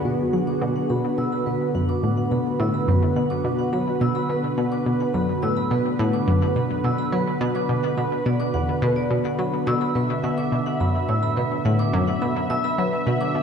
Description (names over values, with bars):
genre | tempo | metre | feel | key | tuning
ambient, sequencer-driven space music | 106 BPM | 4/4 | straight | B minor | A4 = 437 Hz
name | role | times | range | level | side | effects
lush unison pad | sustained chords | 0.0-13.4 s | D3 to E5 | -24 LUFS | right 1 dB | chorus
vibraphone with hard mallets | arpeggios | 0.0-13.3 s | B4 to E6 | -30 LUFS | moving between left 3 dB and right 4 dB | auto-pan, ping-pong delay
analog pluck | riff | 0.1-13.4 s | E2 to F#3 | -23 LUFS | equal | chorus, cassette tape, ping-pong delay
room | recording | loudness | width
wet concert hall reverb, RT60 2.1 s | dark, warm production, lossy compression artefacts | -20 LUFS | side -7 dB against mid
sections
0.0-13.4 A section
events
fade-in on vibraphone 0.0-13.4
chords
0.0 Bm